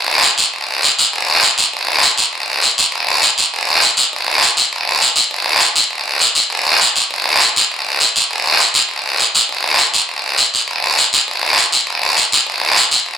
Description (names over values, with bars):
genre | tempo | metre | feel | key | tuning
latin | 201 BPM | 4/4 | straight | none | none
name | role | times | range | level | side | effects
guiro | percussion | 0.2-13.2 s | none | -11 LUFS | equal | none
room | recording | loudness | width
moderate studio ambience, RT60 0.5 s | none | -11 LUFS | side -9 dB against mid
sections
0.0-8.9 A section; 8.9-13.2 B section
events
none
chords
none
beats
0.23 | 0.53 0.83 1.13 1.43 | 1.73 2.03 2.33 2.62 | 2.92 3.22 3.52 3.82 | 4.12 4.42 4.71 5.01 | 5.31 5.61 5.91 6.21 | 6.50 6.80 7.10 7.40 | 7.70 7.99 8.29 8.59 | 8.89 9.19 9.48 9.78 | 10.08 10.38 10.68 10.98 | 11.27 11.57 11.87 12.17 | 12.47 12.77 13.06